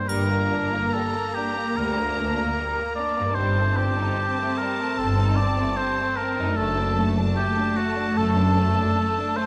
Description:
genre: classical, slow romantic movement for symphony orchestra.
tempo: 75 BPM.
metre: 4/4.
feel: rubato.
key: G minor.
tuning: A4 = 440 Hz.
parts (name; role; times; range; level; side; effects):
warm oboe; second line; 0.0-9.5 s; F#4 to D5; -28 LUFS; equal; none.
concert harp; arpeggios; 0.0-9.5 s; F#2 to C5; -36 LUFS; equal; none.
warm studio violin section; melody; 0.1-9.5 s; A5 to Bb5; -36 LUFS; equal; none.
rich studio violin section; second line; 0.1-9.5 s; G3 to Eb4; -35 LUFS; equal; none.
rich symphonic viola section; accompaniment; 0.1-9.5 s; A3 to C4; -32 LUFS; equal; none.
rich studio cello section; bass; 0.1-8.8 s; D2 to G2; -30 LUFS; equal; none.
rich studio double bass section; bass; 0.1-8.8 s; F#1 to D2; -32 LUFS; equal; none.
triangle; percussion; 0.1-1.7 s; none; -44 LUFS; equal; none.
room: moderate concert hall reverb, RT60 2.3 s.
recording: none.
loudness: -23 LUFS.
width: mono.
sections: 0.1-9.5 A section.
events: none.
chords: 0.1 Gm; 3.4 Am7b5/G; 6.6 D/F#.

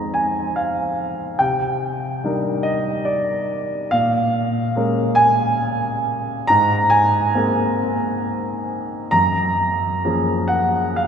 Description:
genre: classical, impressionist solo piano.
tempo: 70 BPM.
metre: 3/4.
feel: uneven beats, rubato.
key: unclear.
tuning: A4 = 439 Hz.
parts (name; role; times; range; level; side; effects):
warm grand piano; solo; 0.0-11.1 s; F2 to Bb5; -17 LUFS; equal; none.
room: wet cathedral reverb, RT60 4.6 s.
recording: recorded in a church or concert hall.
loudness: -17 LUFS.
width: side -7 dB against mid.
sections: 0.0-11.1 A section.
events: none.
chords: 0.0 Fm7; 1.4 Cm9; 3.9 Bbm7; 6.5 Abadd9; 9.1 Gbmaj9.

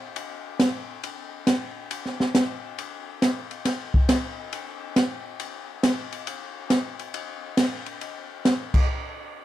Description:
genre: jazz.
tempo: 138 BPM.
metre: 4/4.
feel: swing 66% on 8ths.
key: none.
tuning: none.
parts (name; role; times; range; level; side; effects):
open jazz drum kit; drums; 0.2-8.8 s; crash cymbal, hi-hat, kick drum, ride cymbal, snare drum; -24 LUFS; equal; none.
room: light reverb.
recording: dry, close 1970s-style studio recording.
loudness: -24 LUFS.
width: side -13 dB against mid.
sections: 0.0-8.9 A section.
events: none.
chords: none.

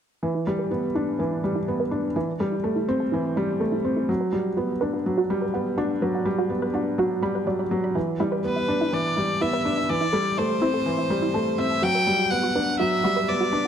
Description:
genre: electronica.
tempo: 124 BPM.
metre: 4/4.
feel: straight.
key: G major.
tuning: A4 = 440 Hz.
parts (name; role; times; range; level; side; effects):
felt-muted upright piano; riff; 0.2-13.7 s; E3 to D4; -24 LUFS; equal; digital delay.
analog pluck; arpeggios; 0.3-13.7 s; E4 to B5; -30 LUFS; right 3 dB; chorus, phaser, digital delay.
bright violin; melody; 8.5-13.7 s; B4 to G5; -24 LUFS; left 2 dB; digital delay.
room: moderate echo chamber reverb, RT60 1.8 s, studio ambience.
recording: dark, warm production.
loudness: -22 LUFS.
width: side -8 dB against mid.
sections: 0.2-13.7 A section.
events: filter sweep on synth arpeggio sound 0.2-13.7.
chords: 0.2 Em7; 2.2 Am7; 4.1 Gmaj7; 8.0 Em7; 9.9 Am7; 11.8 Gmaj7.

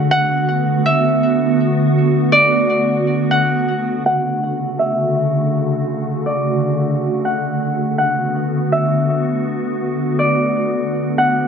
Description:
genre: hip hop.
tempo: 122 BPM.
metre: 4/4.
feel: half-time.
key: B minor.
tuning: A4 = 440 Hz.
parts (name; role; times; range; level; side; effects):
Celtic harp; melody; 0.0-11.5 s; D5 to F#5; -18 LUFS; equal; low-pass filter, ping-pong delay.
glassy FM pad; sustained chords; 0.0-11.5 s; C#3 to F#4; -17 LUFS; equal; ensemble chorus, built-in reverb, low-pass filter.
room: moderate lush hall reverb, RT60 2.5 s.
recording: none.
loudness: -15 LUFS.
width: side -7 dB against mid.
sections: 0.0-4.0 A section; 4.0-11.5 B section.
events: filter sweep 4.0-11.5.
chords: 0.1 Bm7; 4.0 Dmaj7; 8.0 Bm7.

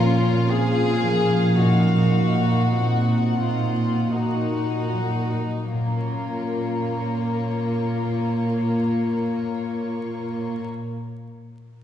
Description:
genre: classical.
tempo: 36-59 BPM.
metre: 3/4.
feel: rubato.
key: Bb minor.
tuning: A4 = 440 Hz.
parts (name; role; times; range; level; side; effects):
rich studio violin section; melody; 0.0-10.6 s; Db5 to Gb5; -35 LUFS; left 5 dB; none.
warm symphonic violin section; second line; 0.0-10.6 s; Bb3 to Ab4; -27 LUFS; left 3 dB; none.
warm chamber viola section; accompaniment; 0.0-10.6 s; Bb3 to Gb4; -30 LUFS; equal; none.
concert harp; arpeggios; 0.0-10.9 s; Bb2 to Db5; -24 LUFS; equal; none.
dark studio cello section; bass; 0.0-10.6 s; Bb2; -25 LUFS; right 1 dB; none.
room: wet concert hall reverb, RT60 2.3 s.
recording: heard from further back in the room, vinyl crackle, nothing above 10.9 kHz.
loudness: -20 LUFS.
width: side -10 dB against mid.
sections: 0.0-5.7 A section; 5.7-10.2 B section.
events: slowing down 0.0-5.7.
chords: 0.0 Bbm; 1.6 Ebm/Bb; 5.7 Bbm.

